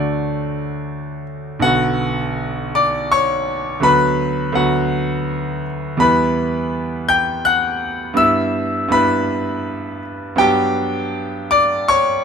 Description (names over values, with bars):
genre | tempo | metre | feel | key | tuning
classical, romantic character piece for solo piano | 82 BPM | 3/4 | rubato | B minor | A4 = 440 Hz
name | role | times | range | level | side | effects
bright concert grand piano | solo | 0.0-12.2 s | B1 to G6 | -16 LUFS | equal | none
room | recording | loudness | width
light reverb | close, detailed microphones | -16 LUFS | side -6 dB against mid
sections
0.0-1.6 A section; 1.6-12.2 B section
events
none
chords
0.0 D; 1.6 Bm; 3.9 Bm/D; 6.0 Em; 8.2 Em/G; 10.4 Gmaj7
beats
0.79 | 1.63 2.39 3.13 | 3.86 4.58 5.31 | 6.03 6.75 7.47 | 8.19 8.93 9.67 | 10.39 11.14 11.89